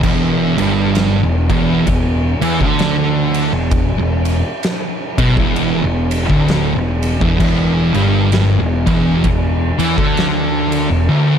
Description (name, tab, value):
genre	stoner and doom metal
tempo	65 BPM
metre	4/4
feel	swing 59% on 8ths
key	unclear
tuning	A4 = 441 Hz
part	thick fuzz guitar	riff	0.0-11.4 s	D2 to E3	-18 LUFS	left 8 dB	distortion
part	thick fuzz guitar	riff	0.0-11.4 s	D2 to E3	-16 LUFS	right 6 dB	distortion
part	fuzz picked electric bass	bass	0.0-11.1 s	D1 to E2	-20 LUFS	left 1 dB	overdrive
part	oversized low-tuned drum kit	drums	0.0-10.9 s	crash cymbal, kick drum, ride cymbal, snare drum	-20 LUFS	equal	none
room	little or no reverb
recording	dark, warm production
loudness	-13 LUFS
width	side -8 dB against mid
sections	0.0-11.4 A section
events	none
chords	0.0 E5